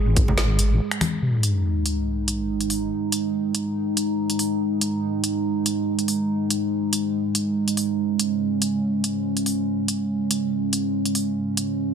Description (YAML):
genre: deep dubstep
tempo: 142 BPM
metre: 4/4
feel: swing 55% on 16ths, half-time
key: unclear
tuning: A4 = 438 Hz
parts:
  - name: dark analog pad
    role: sustained chords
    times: 0.0-11.9 s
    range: G#3 to G#4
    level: -23 LUFS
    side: right 1 dB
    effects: wide subtle chorus
  - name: deep soft wobble bass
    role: bass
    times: 0.0-0.8 s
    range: G#1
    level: -20 LUFS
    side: equal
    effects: chorus
  - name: deep house drum kit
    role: drums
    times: 0.2-11.7 s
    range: finger snaps, hi-hat, snare drum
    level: -25 LUFS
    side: equal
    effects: small room reverb, soft clipping on snare
  - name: congas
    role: percussion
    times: 0.3-1.1 s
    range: none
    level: -28 LUFS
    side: left 2 dB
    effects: dub echo
  - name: sub drop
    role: sound effects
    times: 1.2-2.9 s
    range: none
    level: -24 LUFS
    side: left 1 dB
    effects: none
room: moderate spring reverb, RT60 1.9 s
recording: dense, heavily limited modern master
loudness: -21 LUFS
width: side -7 dB against mid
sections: 0.0-1.2 A section; 1.2-11.9 B section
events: break 0.8-1.2; impact 1.2-2.9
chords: 0.0 N.C.; 1.2 G#5